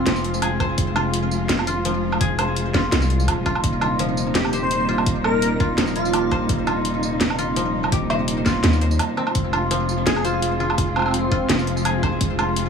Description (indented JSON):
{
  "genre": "half-time drum and bass",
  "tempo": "168 BPM",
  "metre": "4/4",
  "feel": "swing 54% on 16ths, half-time",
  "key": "F minor",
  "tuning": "A4 = 440 Hz",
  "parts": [
    { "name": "airy dreamy lead", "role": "melody", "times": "0.0, 4.4-6.3, 10.1-11.5 s", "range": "C4 to C5", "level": "-27 LUFS", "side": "equal", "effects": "chorus, vintage 12-bit sampler grit, dub echo" },
    { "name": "warm studio cello section", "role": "sustained chords", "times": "0.0-12.7 s", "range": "C3 to F4", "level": "-26 LUFS", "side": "right 2 dB", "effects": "sidechain pumping" },
    { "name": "koto", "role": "arpeggios", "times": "0.0-12.7 s", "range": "F3 to C5", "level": "-25 LUFS", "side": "left 4 dB", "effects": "digital delay" },
    { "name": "long sustained 808-style bass", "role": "bass", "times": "0.0-12.7 s", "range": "Eb1 to Eb2", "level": "-25 LUFS", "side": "equal", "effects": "none" },
    { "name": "drum and bass drum kit", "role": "drums", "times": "0.1-12.6 s", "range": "hi-hat, snare drum, tambourine, woodblock", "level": "-24 LUFS", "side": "right 2 dB", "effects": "none" },
    { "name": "electronic kick drum", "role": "drums", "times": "0.6-12.3 s", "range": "none", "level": "-23 LUFS", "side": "right 1 dB", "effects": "none" }
  ],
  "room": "light reverb",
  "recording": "none",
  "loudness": "-18 LUFS",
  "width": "side -6 dB against mid",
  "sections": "0.0-12.7 A section",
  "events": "break 9.0-9.4",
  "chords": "0.0 Fm; 3.6 Eb6; 9.4 Fm",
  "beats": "0.07 0.42 | 0.78 1.14 1.49 1.85 | 2.21 2.56 2.92 3.28 | 3.64 3.99 4.35 4.71 | 5.07 5.42 5.78 6.14 | 6.49 6.85 7.21 7.57 | 7.92 8.28 8.64 8.99 | 9.35 9.71 10.06 10.42 | 10.78 11.14 11.49 11.85 | 12.21 12.56"
}